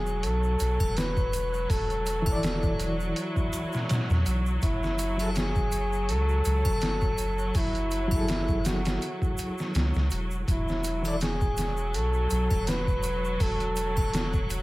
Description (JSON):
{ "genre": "trip hop", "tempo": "82 BPM", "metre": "4/4", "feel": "swing 55% on 16ths", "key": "unclear", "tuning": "A4 = 440 Hz", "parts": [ { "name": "trumpet with bucket mute", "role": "melody", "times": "0.0-14.6 s", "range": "E4 to B4", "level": "-31 LUFS", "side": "equal", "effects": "vintage 12-bit sampler grit, tape echo" }, { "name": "rich studio string section", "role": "sustained chords", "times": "0.0-14.6 s", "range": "F#3", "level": "-35 LUFS", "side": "equal", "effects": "vintage 12-bit sampler grit" }, { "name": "soft dub sub bass", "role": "bass", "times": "0.0-14.6 s", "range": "E1 to E2", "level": "-29 LUFS", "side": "equal", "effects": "none" }, { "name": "egg shaker and triangle", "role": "percussion", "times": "0.1-14.6 s", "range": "none", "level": "-42 LUFS", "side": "right 1 dB", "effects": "none" }, { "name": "trip hop sampler-style drum kit", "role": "drums", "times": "0.2-14.6 s", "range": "hi-hat, kick drum, snare drum", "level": "-29 LUFS", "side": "equal", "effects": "overdrive, small room ambience" }, { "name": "overdriven reed electric piano", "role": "accompaniment", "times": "2.2-11.2 s", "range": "E3 to D5", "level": "-33 LUFS", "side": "equal", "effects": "fast tremolo, tape echo" } ], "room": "small room reverb", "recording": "none", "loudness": "-25 LUFS", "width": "side -19 dB against mid", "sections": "0.0-14.6 A section", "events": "none", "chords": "0.0 E7sus4; 4.6 F#m9; 10.5 Esus4", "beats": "0.23 0.96 | 1.70 2.43 3.16 3.89 | 4.62 5.36 6.09 6.82 | 7.55 8.28 9.01 9.75 | 10.48 11.21 11.94 12.67 | 13.40 14.14" }